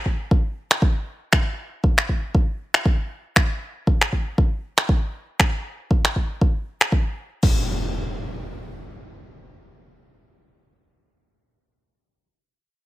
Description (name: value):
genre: afro house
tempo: 118 BPM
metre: 4/4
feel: swing 57% on 16ths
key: none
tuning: none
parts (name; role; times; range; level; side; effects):
- electronic kick drum; drums; 0.1-7.5 s; none; -19 LUFS; equal; none
- afro-pop drum kit; drums; 0.7-7.5 s; crash cymbal, finger snaps; -20 LUFS; equal; none
- impact; sound effects; 7.4-11.2 s; none; -28 LUFS; equal; none
room: little or no reverb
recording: none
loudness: -20 LUFS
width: side -16 dB against mid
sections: 0.0-7.4 A section; 7.4-11.5 B section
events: none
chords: none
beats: 0.31 0.82 | 1.33 1.83 2.34 2.85 | 3.36 3.87 4.38 4.89 | 5.39 5.90 6.41 6.92 | 7.43 7.94 8.45 8.95 | 9.46 9.97 10.48 10.99